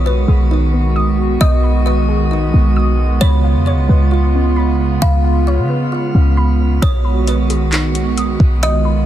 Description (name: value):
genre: hip hop, atmospheric cloud-rap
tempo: 133 BPM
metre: 4/4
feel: half-time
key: B lydian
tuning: A4 = 440 Hz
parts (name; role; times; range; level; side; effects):
- kalimba; melody; 0.0-9.1 s; C#5 to E#5; -25 LUFS; left 1 dB; digital delay
- hollow soft pad; sustained chords; 0.0-9.1 s; C#3 to F#4; -18 LUFS; right 3 dB; chorus, sidechain pumping
- warbly dusty pluck; arpeggios; 0.0-9.1 s; B3 to D#6; -24 LUFS; left 1 dB; chorus, digital delay
- clean 808-style bass; bass; 0.0-9.1 s; A#1 to C#3; -14 LUFS; equal; none
- smooth R&B drum kit; drums; 6.8-8.7 s; handclaps, hi-hat, kick drum; -19 LUFS; equal; vintage 12-bit sampler grit
room: little or no reverb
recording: dense, heavily limited modern master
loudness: -12 LUFS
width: side -12 dB against mid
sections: 0.0-9.1 A section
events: none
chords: 0.0 B6; 3.2 C#7; 6.8 B6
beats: 0.06 0.51 0.96 | 1.41 1.86 2.31 2.76 | 3.21 3.67 4.12 4.57 | 5.02 5.47 5.92 6.37 | 6.82 7.28 7.73 8.18 | 8.63